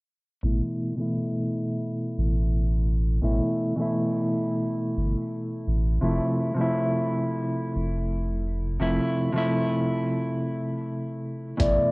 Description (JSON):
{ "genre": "trip hop", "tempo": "86 BPM", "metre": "4/4", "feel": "swing 58% on 16ths", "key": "A minor", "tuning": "A4 = 440 Hz", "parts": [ { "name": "mellow electric guitar", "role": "accompaniment", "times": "0.4-11.9 s", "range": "B2 to E4", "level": "-25 LUFS", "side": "equal", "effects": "harmonic tremolo, low-pass filter, cassette tape" }, { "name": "warm sub bass", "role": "bass", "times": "0.4-11.8 s", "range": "F1 to A1", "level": "-24 LUFS", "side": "equal", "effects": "none" }, { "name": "vibraphone with soft mallets", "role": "melody", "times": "11.6-11.9 s", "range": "D5", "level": "-22 LUFS", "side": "equal", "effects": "cassette tape" }, { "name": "trip hop sampler-style drum kit", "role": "drums", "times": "11.6-11.8 s", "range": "hi-hat, kick drum", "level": "-27 LUFS", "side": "equal", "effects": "studio reverb, cassette tape" } ], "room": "light reverb, digital ambience", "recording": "home recording on cassette, low-pass filter", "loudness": "-24 LUFS", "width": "side -28 dB against mid", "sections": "0.4-11.6 A section", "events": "filter sweep 0.4-11.6; break 10.2-11.6", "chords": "0.4 Asus2; 6.0 Fmaj7" }